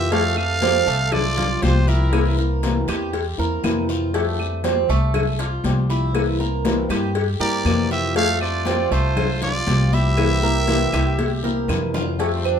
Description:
latin, Cuban son and guajira; 119 BPM; 4/4; straight; F major; A4 = 440 Hz
growling trumpet; melody; 0.0-2.4, 7.4-12.6 s; C4 to F5; -24 LUFS; right 1 dB
raspy soprano saxophone; second line; 0.0-2.4, 7.4-11.7 s; E4 to A4; -30 LUFS; right 5 dB
flamenco guitar; accompaniment; 0.0-12.6 s; C3 to G4; -26 LUFS; left 2 dB
Cuban tres; arpeggios; 0.0-12.6 s; A3 to Bb4; -26 LUFS; right 6 dB
upright bass; bass; 0.0-12.6 s; C2 to G2; -22 LUFS; equal
congas; percussion; 0.1-12.6 s; -29 LUFS; left 3 dB
cowbell; percussion; 0.1-12.4 s; -28 LUFS; left 8 dB
guiro; percussion; 0.1-12.6 s; -37 LUFS; left 6 dB
claves; percussion; 0.4-12.6 s; -36 LUFS; right 1 dB
moderate studio reverb, RT60 0.6 s; minimal, uncompressed stereo recording; -18 LUFS; side -8 dB against mid
0.0-12.2 A section
drum fill 11.2-12.2
0.1 Fadd9; 2.1 C7; 4.1 Fadd9; 6.2 C7; 8.2 Fadd9; 10.2 C7

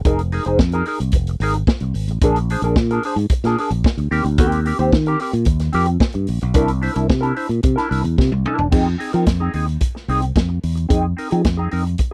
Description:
disco; 111 BPM; 4/4; straight; F dorian; A4 = 438 Hz
fingered electric bass; bass; 0.0-11.9 s; E1 to F3; -21 LUFS; equal
vintage drum kit; drums; 0.0-12.1 s; crash cymbal, hi-hat, kick drum, snare drum, toms; -20 LUFS; equal
mellow electric guitar; accompaniment; 0.1-12.0 s; C4 to C5; -23 LUFS; equal; wah
little or no reverb; dry, close 1970s-style studio recording; -19 LUFS; mono
0.0-8.7 A section; 8.7-12.1 B section
drum fill 8.2-8.7
0.1 Fm7; 2.2 Bb7; 4.1 Eb6; 6.6 C9; 8.7 Fm7

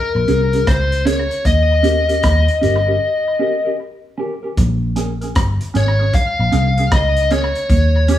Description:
roots reggae; 77 BPM; 4/4; swing 64% on 16ths; A4 = 439 Hz
bluesy overdriven lead guitar; melody; 0.0-8.2 s; Bb4 to F5; -18 LUFS; left 2 dB; distortion
vintage muted fingered electric bass; bass; 0.1-8.2 s; G1 to Eb2; -16 LUFS; equal
mellow electric guitar; accompaniment; 0.3-8.2 s; Db4 to Bb4; -22 LUFS; right 3 dB; phaser
crunchy breakbeat drum kit; drums; 0.3-8.2 s; hi-hat, kick drum, rim click; -20 LUFS; equal; tape echo
moderate large studio reverb, RT60 1.1 s; band playing live in one room, small room ambience; -14 LUFS; side -12 dB against mid
0.0-4.6 A section; 4.6-8.2 B section
break 3.0-4.6
0.0 Bbm7; 1.5 Eb7; 4.6 Bbm7

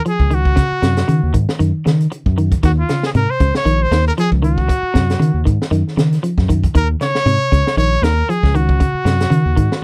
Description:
afrobeat; 117 BPM; 4/4; swing 55% on 16ths; Eb dorian; A4 = 440 Hz
clean electric guitar; arpeggios; 0.0-9.8 s; C3 to F3; -22 LUFS; equal; vibrato effect, tape echo
bright trumpet; melody; 0.1-9.8 s; F4 to Db5; -22 LUFS; equal
compact cocktail drum kit; drums; 0.1-9.8 s; hi-hat, kick drum, snare drum; -21 LUFS; equal
fingered electric bass; bass; 0.2-9.7 s; Bb1 to Eb3; -18 LUFS; equal
light reverb; -16 LUFS; mono
0.0-9.8 A section
0.0 Ebm7

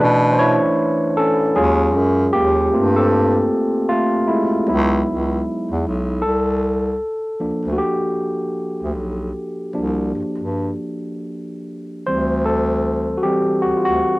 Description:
R&B, neo-soul; 77 BPM; 4/4; swing 61% on 16ths; A4 = 441 Hz
barky tine electric piano; accompaniment; 0.0-14.2 s; E3 to C#5; -18 LUFS; equal; overdrive, cassette tape, plate reverb
breathy bass clarinet; bass; 0.0-14.0 s; B1 to B2; -20 LUFS; equal; transformer saturation
moderate studio reverb, RT60 0.6 s; home recording on cassette; -16 LUFS; side -21 dB against mid
0.0-6.2 A section; 6.2-14.2 B section
tine electric piano solo 0.0-6.2, 6.2-14.2
0.0 Bm11; 1.6 Ebm11; 2.7 Gm11; 4.7 Dbm11; 6.2 C9sus4; 12.1 D9sus4

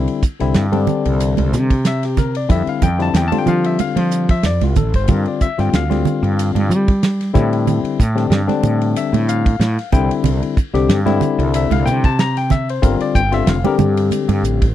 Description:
electric jazz fusion; 93 BPM; 4/4; swing 55% on 16ths; A4 = 442 Hz
barky tine electric piano; accompaniment; 0.0-14.6 s; D3 to Bb5; -19 LUFS; left 6 dB
fretless electric bass; bass; 0.0-14.7 s; F1 to G3; -17 LUFS; right 1 dB
damped 70s drum kit; drums; 0.1-14.7 s; hi-hat, kick drum, ride cymbal, snare drum; -18 LUFS; right 1 dB
congas; percussion; 0.7-14.4 s; -20 LUFS; right 10 dB
light reverb; dry, close 1970s-style studio recording; -14 LUFS; side -12 dB against mid
0.0-14.7 A section
0.0 Cadd9; 2.5 Fmaj9; 5.1 G7sus4; 7.3 Am7; 9.9 Cadd9; 12.8 Gsus2

